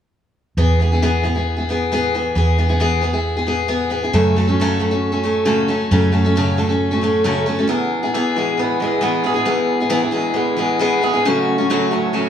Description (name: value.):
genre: rock.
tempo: 135 BPM.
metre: 4/4.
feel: straight.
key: E major.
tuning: A4 = 440 Hz.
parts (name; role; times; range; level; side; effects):
picked steel-string acoustic guitar; accompaniment; 0.6-12.3 s; F#2 to A4; -17 LUFS; left 1 dB; none.
hollow-body short-scale fingered electric bass; bass; 0.6-7.7 s; E2 to F#2; -19 LUFS; right 1 dB; none.
electric guitar through a small old amp; riff; 7.7-12.3 s; E2 to G#4; -20 LUFS; right 2 dB; none.
room: wet large studio reverb, RT60 1.3 s.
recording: band playing live in one room.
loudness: -15 LUFS.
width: side -9 dB against mid.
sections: 0.6-7.7 A section; 7.7-12.3 B section.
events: none.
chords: 0.6 E; 4.1 F#m; 7.7 E; 11.2 F#m.